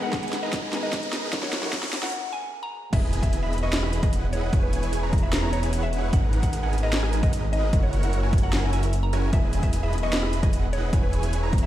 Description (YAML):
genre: future bass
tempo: 150 BPM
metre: 4/4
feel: half-time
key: unclear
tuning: A4 = 440 Hz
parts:
  - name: mallet-like synth pluck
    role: melody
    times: 0.0-11.7 s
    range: B4 to A#5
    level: -34 LUFS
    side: left 1 dB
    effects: chorus, sidechain pumping, ping-pong delay
  - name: felt-muted upright piano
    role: accompaniment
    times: 0.0-3.0 s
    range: F#3 to A#5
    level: -36 LUFS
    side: left 4 dB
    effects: sidechain pumping, ping-pong delay
  - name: ethereal airy pad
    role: sustained chords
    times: 0.0-11.7 s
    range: G#2 to A#5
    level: -39 LUFS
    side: equal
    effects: none
  - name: dense compressed supersaw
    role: riff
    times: 0.0-11.7 s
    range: D#4 to C#6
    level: -32 LUFS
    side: right 2 dB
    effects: sidechain pumping
  - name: riser and impact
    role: sound effects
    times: 0.0-4.5 s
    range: none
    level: -34 LUFS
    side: equal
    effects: none
  - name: electronic kick drum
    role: drums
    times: 0.1-11.6 s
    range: none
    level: -24 LUFS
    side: equal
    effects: overdrive
  - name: trap drum kit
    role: drums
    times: 0.1-11.7 s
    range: crash cymbal, hi-hat, rim click, snare drum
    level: -31 LUFS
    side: equal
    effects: none
  - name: airy dreamy lead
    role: arpeggios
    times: 2.9-11.7 s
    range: D#5 to C#6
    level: -38 LUFS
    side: right 1 dB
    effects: chorus, sidechain pumping
  - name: wide detuned saw bass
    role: bass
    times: 2.9-11.7 s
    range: E1 to G#1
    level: -25 LUFS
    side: equal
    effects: chorus, sidechain pumping
room: little or no reverb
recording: played on a big sound system in a bare room, large studio reverb, high-pass filter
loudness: -22 LUFS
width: side -13 dB against mid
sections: 0.0-2.9 A section; 2.9-11.7 B section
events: build-up 0.0-2.9; drum fill 0.0-2.1; riser 0.0-2.1; filter sweep on ambient pad 0.0-2.9; break 2.1-2.9; drop 2.9-11.7; impact 2.9-4.5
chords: 0.0 G#m9; 1.3 F#7; 2.9 Emaj7; 4.5 C#m7/E; 6.1 G#m9; 7.7 F#7; 9.3 Emaj7; 10.9 C#m7/E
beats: 0.13 0.53 0.93 | 1.33 1.73 2.13 2.53 | 2.93 3.33 3.73 4.13 | 4.53 4.93 5.33 5.73 | 6.13 6.53 6.93 7.33 | 7.73 8.13 8.53 8.93 | 9.33 9.73 10.13 10.53 | 10.93 11.33